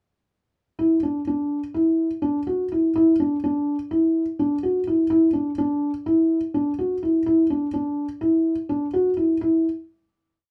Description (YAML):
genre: progressive instrumental, progressive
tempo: 251 BPM (eighths)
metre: 9/8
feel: straight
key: unclear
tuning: A4 = 436 Hz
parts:
  - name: felt-muted upright piano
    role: solo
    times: 0.8-9.6 s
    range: D4 to F#4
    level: -22 LUFS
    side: equal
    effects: none
room: moderate studio reverb, RT60 0.5 s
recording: none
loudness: -22 LUFS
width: mono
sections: 0.8-9.4 A section; 9.4-10.5 final note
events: none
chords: none